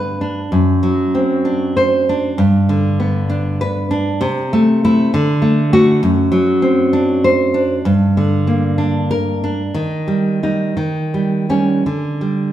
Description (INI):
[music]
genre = romantic piece for solo classical guitar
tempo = 54-68 BPM (dotted quarters)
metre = 6/8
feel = rubato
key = G major, G minor from 6.0 s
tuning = A4 = 441 Hz
[part]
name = nylon-string guitar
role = solo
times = 0.0-12.5 s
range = F#2 to C5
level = -13 LUFS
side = equal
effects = none
[sound]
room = wet large studio reverb, RT60 1.3 s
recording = band playing live in one room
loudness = -13 LUFS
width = side -12 dB against mid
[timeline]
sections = 0.0-12.5 A section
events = none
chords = 0.0 G; 0.5 D7/F#; 2.4 G; 4.2 Am/C; 5.1 D; 6.0 D7/F#; 7.9 Gm; 9.7 Eb; 10.8 Eb7; 11.9 G5/D